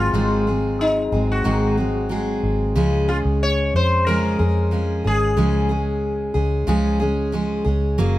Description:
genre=acoustic pop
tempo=92 BPM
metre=4/4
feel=straight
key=Db major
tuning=A4 = 440 Hz
part: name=sitar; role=melody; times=0.0-6.3 s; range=Eb4 to Db5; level=-24 LUFS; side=left 2 dB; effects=none
part: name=picked steel-string acoustic guitar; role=accompaniment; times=0.0-8.2 s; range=Ab2 to Ab4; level=-21 LUFS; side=equal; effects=none
part: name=vintage muted fingered electric bass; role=bass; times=0.0-8.2 s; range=Gb1 to F2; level=-22 LUFS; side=equal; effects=none
room=light reverb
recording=close, detailed microphones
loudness=-18 LUFS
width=side -15 dB against mid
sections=0.0-8.2 A section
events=none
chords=0.0 Ab7; 2.8 Db

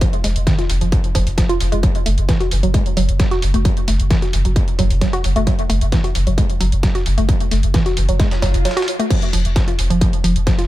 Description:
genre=driving peak-time techno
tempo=132 BPM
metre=4/4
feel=straight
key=unclear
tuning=A4 = 440 Hz
part: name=woody wave-folded pluck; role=riff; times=0.0-10.6 s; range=Eb3 to Gb4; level=-21 LUFS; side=right 1 dB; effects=chorus, sidechain pumping, dub echo
part: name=dusty soul sampler-style drum kit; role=drums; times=0.0-10.7 s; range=hi-hat, snare drum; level=-32 LUFS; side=equal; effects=high-pass filter on snare, high-pass filter on hats, dub echo
part: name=electronic kick drum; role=drums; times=0.0-10.6 s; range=none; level=-17 LUFS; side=equal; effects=distortion
part: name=techno drum kit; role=drums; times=0.0-10.7 s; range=crash cymbal, hi-hat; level=-28 LUFS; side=right 1 dB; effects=sidechain pumping on hats, sidechain pumping on cymbals
part: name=saturated sub bass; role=bass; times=0.2-10.5 s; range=F1 to Gb1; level=-18 LUFS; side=equal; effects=overdrive, sidechain pumping, low-pass filter
part: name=swell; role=sound effects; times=8.4-9.1 s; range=none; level=-27 LUFS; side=left 3 dB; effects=none
room=digital ambience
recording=echo-heavy mix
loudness=-14 LUFS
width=side -15 dB against mid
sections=0.0-9.1 A section; 9.1-10.7 B section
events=swell 8.4-9.1; kick drops out 8.7-9.1; drop 9.1-10.7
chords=none

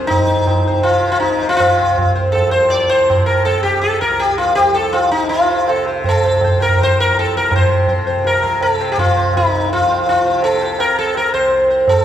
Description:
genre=indian classical, Hindustani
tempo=163 BPM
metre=4/4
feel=straight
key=C raga bageshri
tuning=A4 = 440 Hz
part: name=sitar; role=melody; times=0.0-12.0 s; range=Eb4 to D5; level=-14 LUFS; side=left 1 dB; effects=none
part: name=tanpura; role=drone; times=0.0-12.0 s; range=C2 to C3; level=-24 LUFS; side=left 1 dB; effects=none
part: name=tabla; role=percussion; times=0.1-12.0 s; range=none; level=-19 LUFS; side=right 2 dB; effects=none
room=wet concert hall reverb, RT60 1.8 s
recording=recorded in a church or concert hall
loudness=-12 LUFS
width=side -10 dB against mid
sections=0.0-7.5 A section; 7.5-12.0 B section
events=speeding up 0.0-12.0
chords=none

